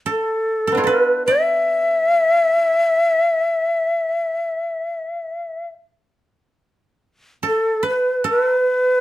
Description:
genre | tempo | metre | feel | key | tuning
japanese traditional, Japanese chamber music | 67-78 BPM | 4/4 | rubato | E in sen | A4 = 444 Hz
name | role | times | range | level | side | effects
breathy shakuhachi | melody | 0.1-9.0 s | A4 to E5 | -17 LUFS | left 1 dB | none
koto | second line | 0.1-9.0 s | B3 to E5 | -22 LUFS | right 3 dB | none
room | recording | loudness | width
light reverb | none | -16 LUFS | side -15 dB against mid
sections
0.0-6.6 A section; 6.6-9.0 B section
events
none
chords
none

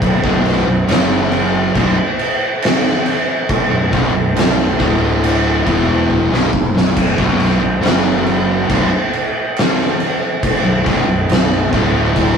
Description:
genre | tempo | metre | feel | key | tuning
stoner and doom metal | 69 BPM | 4/4 | straight | B minor | A4 = 440 Hz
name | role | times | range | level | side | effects
fuzz guitar | riff | 0.0-12.4 s | B1 to F#3 | -17 LUFS | equal | distortion
fuzz fingered electric bass | bass | 0.0-12.4 s | B0 to F#1 | -19 LUFS | equal | overdrive
oversized low-tuned drum kit | drums | 0.0-12.4 s | crash cymbal, kick drum, snare drum | -15 LUFS | equal | none
room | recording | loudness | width
moderate stone room reverb, RT60 1.0 s | rough rehearsal-room recording, warm saturation | -13 LUFS | side -6 dB against mid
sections
0.0-12.4 A section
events
drum fill 6.1-7.0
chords
0.0 B5; 0.9 F#5; 1.8 B5; 4.8 D5; 5.7 B5; 7.8 F#5; 8.7 Bm

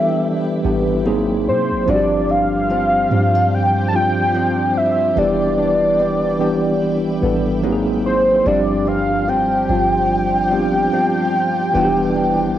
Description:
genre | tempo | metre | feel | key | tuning
contemporary R&B | 73 BPM | 4/4 | swing 58% on 16ths | unclear | A4 = 441 Hz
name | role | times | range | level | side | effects
warm velvety synth lead | melody | 0.0-12.6 s | B#4 to A5 | -18 LUFS | equal | chorus, cassette tape, analog delay
mellow tine electric piano | accompaniment | 0.0-12.6 s | E3 to A4 | -19 LUFS | equal | medium stereo tremolo, cassette tape
granular cloud pad | sustained chords | 0.0-12.6 s | E4 to G5 | -31 LUFS | right 1 dB | built-in reverb, cassette tape
flamenco guitar | arpeggios | 0.0-12.6 s | G2 to G4 | -26 LUFS | left 4 dB | cassette tape
soft 808-style bass | bass | 0.6-12.6 s | E1 to B#2 | -25 LUFS | equal | none
room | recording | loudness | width
moderate spring reverb, RT60 2.0 s | home recording on cassette | -15 LUFS | side -11 dB against mid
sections
0.0-12.6 A section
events
none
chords
0.0 Em7; 1.1 G#9; 1.9 G7sus4; 5.2 Em7; 7.6 G#9; 8.5 G7sus4; 11.7 Em7

